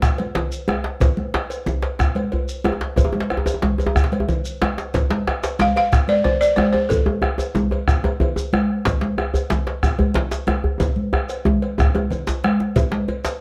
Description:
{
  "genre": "west african traditional, West African drum ensemble",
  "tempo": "123 BPM (dotted quarters)",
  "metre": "12/8",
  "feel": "straight",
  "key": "F major pentatonic",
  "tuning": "A4 = 440 Hz",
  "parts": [
    { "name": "balafon", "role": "melody", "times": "0.0-0.5, 5.6-7.5 s", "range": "F4 to F5", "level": "-21 LUFS", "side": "equal", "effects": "none" },
    { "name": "bombo", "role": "percussion", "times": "0.0-13.3 s", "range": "none", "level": "-24 LUFS", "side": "equal", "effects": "none" },
    { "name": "djembe", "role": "percussion", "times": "0.0-13.2 s", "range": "none", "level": "-28 LUFS", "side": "equal", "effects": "none" },
    { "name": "djembe", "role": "percussion", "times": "0.0-13.4 s", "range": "none", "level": "-26 LUFS", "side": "equal", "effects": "none" },
    { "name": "shekere", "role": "percussion", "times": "0.0-13.4 s", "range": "none", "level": "-31 LUFS", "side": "equal", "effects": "none" },
    { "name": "congas", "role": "percussion", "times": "0.2-13.2 s", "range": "none", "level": "-26 LUFS", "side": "equal", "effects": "none" },
    { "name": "cowbell", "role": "percussion", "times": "0.2-13.4 s", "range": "none", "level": "-32 LUFS", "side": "equal", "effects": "none" }
  ],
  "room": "moderate studio reverb, RT60 0.6 s",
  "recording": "dark, warm production",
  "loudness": "-20 LUFS",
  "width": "mono",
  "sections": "0.0-12.8 A section",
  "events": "drum fill 10.8-12.8",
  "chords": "none"
}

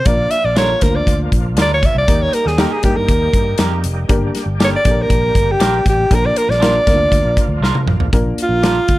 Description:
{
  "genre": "uptempo 1960s-style soul",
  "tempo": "119 BPM",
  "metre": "4/4",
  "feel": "straight",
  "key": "Bb major",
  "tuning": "A4 = 441 Hz",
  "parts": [
    { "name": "breathy alto saxophone", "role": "melody", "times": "0.0-9.0 s", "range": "F4 to E5", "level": "-16 LUFS", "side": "equal", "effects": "none" },
    { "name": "overdriven tonewheel organ", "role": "sustained chords", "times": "0.0-8.1 s", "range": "F3 to G4", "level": "-29 LUFS", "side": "equal", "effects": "slow rotary speaker, chorus vibrato" },
    { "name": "dark upright piano", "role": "accompaniment", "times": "0.1-8.7 s", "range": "Bb3 to C5", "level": "-22 LUFS", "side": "left 1 dB", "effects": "none" },
    { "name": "fingered electric bass", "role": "bass", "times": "0.1-9.0 s", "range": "F1 to G2", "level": "-19 LUFS", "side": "equal", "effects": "none" },
    { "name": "natural country drum kit", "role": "drums", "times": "0.1-9.0 s", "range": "hi-hat, kick drum, snare drum, toms", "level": "-17 LUFS", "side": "equal", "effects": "none" },
    { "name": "electric guitar through a small old amp", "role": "stabs", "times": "0.6-8.8 s", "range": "D4 to Bb4", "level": "-25 LUFS", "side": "right 4 dB", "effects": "lush chorus" }
  ],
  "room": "light reverb, small room ambience",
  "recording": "dark, warm production",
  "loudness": "-12 LUFS",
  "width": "side -17 dB against mid",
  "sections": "0.0-8.1 A section",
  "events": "alto saxophone solo 0.0-8.1; drum fill 7.6-8.1",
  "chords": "0.1 Bb; 2.1 Eb; 4.1 Gm; 6.1 Bb"
}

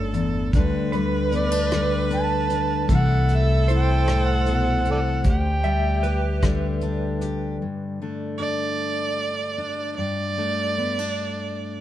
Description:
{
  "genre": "acoustic folk-pop ballad",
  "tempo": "51 BPM (dotted quarters)",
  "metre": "6/8",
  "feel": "straight",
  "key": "G major",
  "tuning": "A4 = 441 Hz",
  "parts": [
    { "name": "rich viola", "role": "second line", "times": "0.0-11.8 s", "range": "G4 to D5", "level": "-28 LUFS", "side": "right 3 dB", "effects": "none" },
    { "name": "fingerpicked steel-string acoustic guitar", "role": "accompaniment", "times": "0.0-11.8 s", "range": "D2 to G4", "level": "-26 LUFS", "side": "left 3 dB", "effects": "none" },
    { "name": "upright bass", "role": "bass", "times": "0.0-7.6 s", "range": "G1 to D2", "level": "-23 LUFS", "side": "equal", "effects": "none" },
    { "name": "vintage brush drum kit", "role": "drums", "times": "0.1-7.4 s", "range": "hi-hat, kick drum, rim click", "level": "-24 LUFS", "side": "equal", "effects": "none" },
    { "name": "electric guitar through a small old amp", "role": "arpeggios", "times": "0.9-8.0 s", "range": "B4 to E5", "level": "-31 LUFS", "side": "right 2 dB", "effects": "tremolo" },
    { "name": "overdriven harmonica", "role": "melody", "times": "1.4-6.4 s", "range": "A4 to A5", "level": "-26 LUFS", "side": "right 2 dB", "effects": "slapback echo" }
  ],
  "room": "light reverb",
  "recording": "dark, warm production",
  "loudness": "-20 LUFS",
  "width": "side -12 dB against mid",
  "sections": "0.0-7.6 A section; 7.6-11.8 B section",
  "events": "viola solo 7.6-11.8",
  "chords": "0.0 Gsus2; 0.5 Dsus4; 2.9 Am/C; 5.2 Dsus4; 7.6 Gsus2"
}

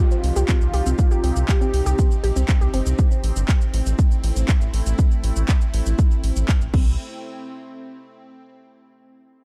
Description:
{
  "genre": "melodic techno",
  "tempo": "120 BPM",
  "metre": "4/4",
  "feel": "straight",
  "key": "unclear",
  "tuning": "A4 = 440 Hz",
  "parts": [
    { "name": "analog synth brass", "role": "melody", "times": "0.0-2.1 s", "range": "F4 to G4", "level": "-32 LUFS", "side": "equal", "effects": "chorus, sidechain pumping, dub echo" },
    { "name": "evolving wavetable pad", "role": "sustained chords", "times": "0.2-7.0 s", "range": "C3 to G4", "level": "-35 LUFS", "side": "equal", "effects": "phaser, built-in reverb, sidechain pumping" },
    { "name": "warbly dusty pluck", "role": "arpeggios", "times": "0.0-2.8, 6.7-7.0 s", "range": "C4 to G4", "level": "-32 LUFS", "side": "equal", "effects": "chorus, sidechain pumping, digital delay" },
    { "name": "downlifter", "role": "sound effects", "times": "0.0-3.0 s", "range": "none", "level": "-45 LUFS", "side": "equal", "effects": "none" },
    { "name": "house drum kit", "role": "drums", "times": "0.1-6.8 s", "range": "crash cymbal, handclaps, hi-hat, shaker", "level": "-34 LUFS", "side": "equal", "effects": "overdrive, sidechain pumping on cymbals, sidechain pumping on perc, sidechain pumping on hats" },
    { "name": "round analog bass", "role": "bass", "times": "0.2-7.0 s", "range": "G1 to C2", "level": "-23 LUFS", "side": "equal", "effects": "sidechain pumping" },
    { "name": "electronic kick drum", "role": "drums", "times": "0.5-6.8 s", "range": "none", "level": "-20 LUFS", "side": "equal", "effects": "overdrive" }
  ],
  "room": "little or no reverb",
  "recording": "dark, warm production",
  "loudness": "-20 LUFS",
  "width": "mono",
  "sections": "0.0-7.0 A section; 7.0-9.0 B section",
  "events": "none",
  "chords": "0.0 Cm; 3.0 Am; 6.7 Cm; 7.0 N.C."
}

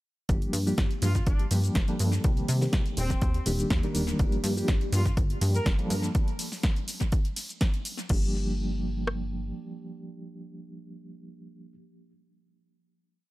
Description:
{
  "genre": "filtered disco house",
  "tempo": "123 BPM",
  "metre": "4/4",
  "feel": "straight",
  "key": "G minor",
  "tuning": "A4 = 440 Hz",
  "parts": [
    { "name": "mellow reed electric piano", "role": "accompaniment", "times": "0.3-11.7 s", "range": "Eb3 to Bb4", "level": "-32 LUFS", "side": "equal", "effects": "fast tremolo, phaser, sidechain pumping, analog delay" },
    { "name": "plucky analog bass", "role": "bass", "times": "0.3-9.5 s", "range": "Eb1 to C3", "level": "-28 LUFS", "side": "equal", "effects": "sidechain pumping" },
    { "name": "punchy analog drum machine", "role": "drums", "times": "0.3-9.2 s", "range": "kick drum, rim click", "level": "-26 LUFS", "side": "equal", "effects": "overdrive, small room ambience" },
    { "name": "punchy analog drum machine", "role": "drums", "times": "0.3-8.2 s", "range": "crash cymbal, hi-hat, ride cymbal, shaker, snare drum", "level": "-34 LUFS", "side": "equal", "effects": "overdrive, sidechain pumping on hats, small room ambience, sidechain pumping on perc, sidechain pumping on cymbals, analog delay" },
    { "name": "mellow horn section", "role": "melody", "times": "1.0-5.7 s", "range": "C4 to Bb4", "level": "-39 LUFS", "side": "equal", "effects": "sidechain pumping, analog delay" }
  ],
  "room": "little or no reverb",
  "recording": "echo-heavy mix",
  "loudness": "-25 LUFS",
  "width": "side -18 dB against mid",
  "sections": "0.3-8.1 drop; 8.1-12.0 final chord",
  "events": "drop 0.3-8.1",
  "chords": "0.3 Gm7; 2.2 Cm7; 3.0 Ebmaj7; 4.2 Gm7; 6.1 N.C.; 8.1 Gm7"
}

